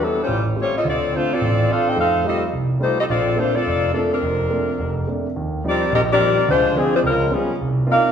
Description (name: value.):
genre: jazz.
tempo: 213 BPM.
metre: 4/4.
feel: swing 62% on 8ths.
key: Bb major.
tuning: A4 = 436 Hz.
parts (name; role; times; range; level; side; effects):
mellow saxophone section; melody; 0.0-8.1 s; F3 to G5; -18 LUFS; left 1 dB; none.
warm grand piano; accompaniment; 0.0-8.1 s; F1 to G4; -21 LUFS; right 1 dB; none.
room: wet recital hall reverb, RT60 1.2 s.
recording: recorded in a church or concert hall.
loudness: -17 LUFS.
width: side -8 dB against mid.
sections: 0.0-5.3 A section; 5.3-8.1 B section.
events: none.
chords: 0.3 A7alt; 0.8 Dm7; 2.0 F9; 3.1 Bbmaj9; 5.3 Eb69; 6.5 Dm7b5; 7.0 Db7#11; 7.6 Cm11.